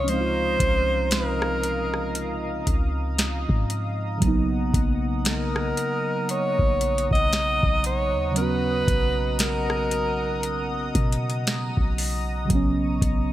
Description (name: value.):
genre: contemporary R&B.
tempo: 58 BPM.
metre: 4/4.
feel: swing 58% on 16ths.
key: B major.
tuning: A4 = 440 Hz.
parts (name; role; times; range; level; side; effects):
bright alto saxophone; melody; 0.0-10.9 s; A#4 to D#5; -25 LUFS; right 1 dB; digital delay.
muted felt-like synth keys; accompaniment; 0.0-13.3 s; C#3 to F#4; -28 LUFS; right 1 dB; chorus.
chorused pulse-width pad; sustained chords; 0.0-13.3 s; D#5 to D#6; -33 LUFS; left 1 dB; none.
clean 808-style bass; bass; 0.0-13.3 s; A#1 to B2; -28 LUFS; equal; none.
booming analog drum machine; drums; 0.1-13.3 s; hi-hat, kick drum, rim click, snare drum; -25 LUFS; equal; none.
room: light reverb, digital ambience.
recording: bright 1980s-style digital production.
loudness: -21 LUFS.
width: side -14 dB against mid.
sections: 0.0-13.3 A section.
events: none.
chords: 0.0 C#maj9; 4.2 Bmaj9.